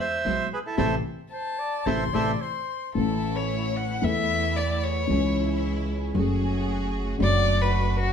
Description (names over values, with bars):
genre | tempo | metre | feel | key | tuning
tango | 113 BPM | 4/4 | rubato | A major | A4 = 440 Hz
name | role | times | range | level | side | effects
bandoneon | melody | 0.0-2.3 s | E4 to E5 | -27 LUFS | right 4 dB | none
rich symphonic string section | stabs | 0.2-8.1 s | G#3 to G#4 | -34 LUFS | right 5 dB | none
upright bass | bass | 0.2-8.1 s | F#1 to E2 | -28 LUFS | right 1 dB | none
dark upright piano | accompaniment | 0.3-8.1 s | A1 to A4 | -27 LUFS | left 2 dB | none
warm clarinet | second line | 1.3-3.0 s | C5 to D5 | -35 LUFS | right 3 dB | none
warm violin | second line | 1.3-8.1 s | F#4 to C6 | -28 LUFS | left 3 dB | none
room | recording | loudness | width
moderate studio reverb, RT60 0.9 s | heard from further back in the room | -23 LUFS | side -7 dB against mid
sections
0.0-3.0 A section; 3.0-8.1 B section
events
band accent 0.8-3.0; violin solo 3.0-8.1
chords
0.0 E; 0.8 Am; 3.0 A; 4.0 Esus4; 5.1 C#m; 6.2 F#madd9; 7.2 D/F#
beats
0.25 | 0.79 1.32 1.87 2.41 | 2.96 3.50 4.03 4.57 | 5.10 5.63 6.16 6.68 | 7.21 7.73